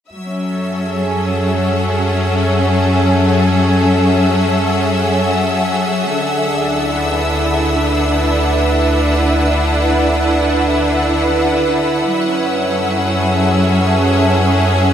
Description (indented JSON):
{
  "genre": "ambient",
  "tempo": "free time",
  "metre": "none",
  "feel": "none",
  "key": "F# minor",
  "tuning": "A4 = 439 Hz",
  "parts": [
    { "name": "clear symphonic string section", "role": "sustained chords", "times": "0.1-14.9 s", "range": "D3 to F#5", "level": "-14 LUFS", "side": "equal", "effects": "none" },
    { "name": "round analog bass", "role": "bass", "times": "0.1-14.9 s", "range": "D2 to F#2", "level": "-19 LUFS", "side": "equal", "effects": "none" },
    { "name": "warm symphonic violin section", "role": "texture", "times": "0.1-14.9 s", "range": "E5 to E6", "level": "-22 LUFS", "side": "left 1 dB", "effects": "none" }
  ],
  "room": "wet huge ambient reverb, RT60 7.8 s",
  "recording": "none",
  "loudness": "-13 LUFS",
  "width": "side -9 dB against mid",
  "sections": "0.1-14.9 A section",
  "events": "none",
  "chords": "0.1 F#madd9; 6.1 D6; 12.1 F#madd9"
}